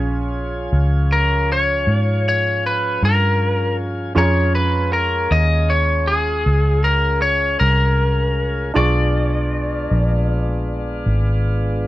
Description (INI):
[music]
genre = slow blues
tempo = 52 BPM (dotted quarters)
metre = 12/8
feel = straight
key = unclear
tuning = A4 = 444 Hz
[part]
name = clear grand piano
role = accompaniment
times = 0.0-11.9 s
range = Db4 to Db6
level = -28 LUFS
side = right 4 dB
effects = none
[part]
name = tonewheel organ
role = sustained chords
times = 0.0-11.9 s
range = F3 to Ab4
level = -29 LUFS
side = equal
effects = slow rotary speaker
[part]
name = vintage muted fingered electric bass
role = bass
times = 0.0-11.9 s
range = G#1 to Ab2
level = -18 LUFS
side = equal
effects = none
[part]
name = lightly driven lead guitar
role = melody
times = 1.1-11.0 s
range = Ab4 to Eb5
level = -19 LUFS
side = left 1 dB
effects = none
[sound]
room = little or no reverb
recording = dry, close 1970s-style studio recording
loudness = -16 LUFS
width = side -16 dB against mid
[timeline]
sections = 0.0-11.9 A section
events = none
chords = 0.0 Bbm7; 8.8 Bdim7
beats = 0.72 1.88 3.02 | 4.17 5.32 6.47 7.62 | 8.77 9.91 11.06